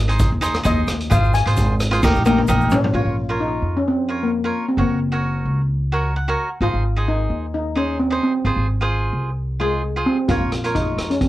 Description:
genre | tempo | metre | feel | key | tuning
calypso | 131 BPM | 4/4 | swing 54% on 16ths | unclear | A4 = 440 Hz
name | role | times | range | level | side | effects
steel pan | melody | 0.0-11.3 s | Ab3 to Ab5 | -22 LUFS | left 1 dB | none
upright bass | bass | 0.0-11.3 s | Gb1 to F2 | -21 LUFS | equal | none
cavaquinho | accompaniment | 0.1-11.1 s | Eb4 to Gb5 | -24 LUFS | right 2 dB | none
street-band drum kit | drums | 0.1-2.9, 10.3-11.3 s | hi-hat, kick drum, rim click, snare drum, toms | -22 LUFS | equal | none
tube shaker | percussion | 0.2-2.8 s | none | -40 LUFS | left 5 dB | none
room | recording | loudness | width
light reverb | worn, warbling old tape, cassette tape, warbly pitch drift | -17 LUFS | side -15 dB against mid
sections
0.0-2.9 A section; 2.9-11.3 B section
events
steel pan solo 0.0-2.9; drum fill 2.0-2.9; cavaquinho fill 5.9-6.6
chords
0.0 Ab; 1.1 Fm/Ab; 2.0 Eb; 2.9 Bbm; 4.8 Gb; 6.6 Ab; 8.4 Fm/Ab; 10.3 Bbm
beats
0.20 0.65 | 1.11 1.57 2.02 2.48 | 2.94 3.40 3.86 4.32 | 4.77 5.23 5.69 6.15 | 6.61 7.07 7.53 7.99 | 8.45 8.91 9.37 9.83 | 10.29 10.75 11.21

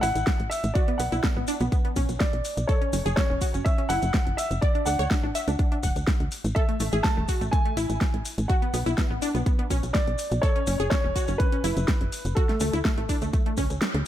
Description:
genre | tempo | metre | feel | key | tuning
progressive house | 124 BPM | 4/4 | straight | unclear | A4 = 440 Hz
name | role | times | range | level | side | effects
dark grand piano | melody | 0.0-14.0 s | A4 to A5 | -30 LUFS | equal | sidechain pumping, tape echo
wide unison pluck | arpeggios | 0.0-14.1 s | A3 to F#5 | -30 LUFS | equal | sidechain pumping, tape echo
tight sequencer bass | bass | 0.0-14.0 s | D1 to D2 | -27 LUFS | equal | sidechain pumping
deep house drum kit | drums | 0.0-14.0 s | hi-hat, snare drum | -31 LUFS | equal | none
maracas | percussion | 0.0-13.9 s | none | -40 LUFS | left 4 dB | none
electronic kick drum | drums | 0.3-13.7 s | none | -25 LUFS | equal | none
room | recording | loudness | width
little or no reverb | none | -22 LUFS | side -12 dB against mid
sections
0.0-14.1 A section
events
kick drops out 13.8; band accent 13.8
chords
0.0 A5; 0.8 Bm; 2.7 F#5; 4.6 D; 6.6 A5; 8.5 Bm; 10.4 F#5; 12.4 D5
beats
0.27 | 0.75 1.24 1.72 2.21 | 2.69 3.17 3.66 4.14 | 4.62 5.11 5.59 6.08 | 6.56 7.04 7.53 8.01 | 8.50 8.98 9.46 9.95 | 10.43 10.91 11.40 11.88 | 12.37 12.85 13.34 13.82

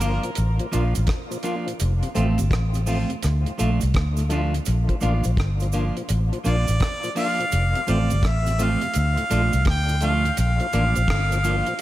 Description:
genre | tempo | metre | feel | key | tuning
roots reggae | 84 BPM | 4/4 | swing 64% on 16ths | unclear | A4 = 440 Hz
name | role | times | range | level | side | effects
clear harmonica | melody | 0.0-0.3, 6.5-11.8 s | Bb4 to G5 | -26 LUFS | equal | dub echo
clean electric guitar | accompaniment | 0.0-11.7 s | F3 to F4 | -28 LUFS | right 2 dB | spring reverb, dub echo
tonewheel organ | accompaniment | 0.0-11.7 s | D2 to F4 | -32 LUFS | left 3 dB | overdrive, stopped rotary speaker, dub echo
vintage muted fingered electric bass | bass | 0.0-11.6 s | F1 to D2 | -21 LUFS | equal | none
deep reggae drum kit | drums | 0.0-11.8 s | hi-hat, kick drum, rim click | -27 LUFS | equal | none
cabasa | percussion | 0.0-11.7 s | none | -39 LUFS | right 10 dB | none
room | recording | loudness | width
light reverb, studio ambience | echo-heavy mix | -20 LUFS | side -15 dB against mid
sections
0.0-11.8 A section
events
none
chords
0.0 Bb; 1.8 F; 3.2 Dm; 4.7 Bb; 7.5 F; 8.9 Dm; 10.4 Bb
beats
0.37 1.09 | 1.80 2.52 3.23 3.94 | 4.66 5.37 6.09 6.80 | 7.52 8.23 8.95 9.66 | 10.37 11.09 11.80

